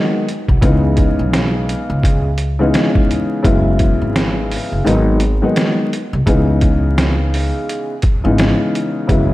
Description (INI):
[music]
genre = hip hop, boom-bap hip-hop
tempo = 85 BPM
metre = 4/4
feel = swing 60% on 16ths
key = C# minor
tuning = A4 = 441 Hz
[part]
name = dark upright piano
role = accompaniment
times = 0.0-9.3 s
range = C#3 to E4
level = -17 LUFS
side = left 1 dB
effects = cassette tape, high-pass filter, low-pass filter
[part]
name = trip hop sampler-style drum kit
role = drums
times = 0.3-9.3 s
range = hi-hat, kick drum, snare drum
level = -17 LUFS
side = equal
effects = none
[part]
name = upright bass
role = bass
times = 0.5-9.3 s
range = F#1 to C#2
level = -17 LUFS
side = equal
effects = none
[sound]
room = moderate lush hall reverb, RT60 1.9 s, small room reverb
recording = dreamy mix soaked in reverb, vinyl crackle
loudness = -13 LUFS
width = side -17 dB against mid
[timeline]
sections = 0.0-6.3 A section; 6.3-9.3 B section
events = kick muted 4.9-6.3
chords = 0.0 G#m7; 0.6 C#m7; 3.4 F#7sus4; 4.9 G#m7; 6.3 C#m7